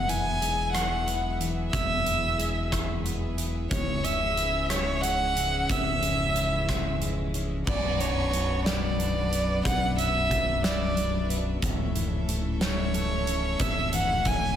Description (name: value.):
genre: post-rock.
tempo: 61 BPM (dotted quarters).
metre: 6/8.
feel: straight.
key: B dorian.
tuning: A4 = 440 Hz.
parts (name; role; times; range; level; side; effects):
clear violin; melody; 0.0-14.6 s; C#5 to G#5; -28 LUFS; right 1 dB; slapback echo.
bright chamber string section; sustained chords; 0.0-14.6 s; E3 to F#5; -38 LUFS; equal; none.
twelve-string electric guitar; arpeggios; 0.0-14.6 s; B1 to A4; -33 LUFS; left 2 dB; slapback echo.
growling fingered electric bass; bass; 0.0-14.6 s; B0 to E1; -31 LUFS; equal; overdrive.
huge arena drum kit; drums; 0.1-14.4 s; crash cymbal, hi-hat, kick drum, rim click, snare drum; -30 LUFS; equal; none.
room: moderate lush hall reverb, RT60 1.8 s, small room ambience.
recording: big arena sound.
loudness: -24 LUFS.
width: side -10 dB against mid.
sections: 0.0-7.7 A section; 7.7-14.6 B section.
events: none.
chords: 0.0 Eadd9; 3.7 C#m; 7.7 Bm; 11.6 A/C#.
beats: 0.74 | 1.73 2.72 | 3.71 4.70 | 5.69 6.68 | 7.67 8.66 | 9.64 10.63 | 11.62 12.61 | 13.59.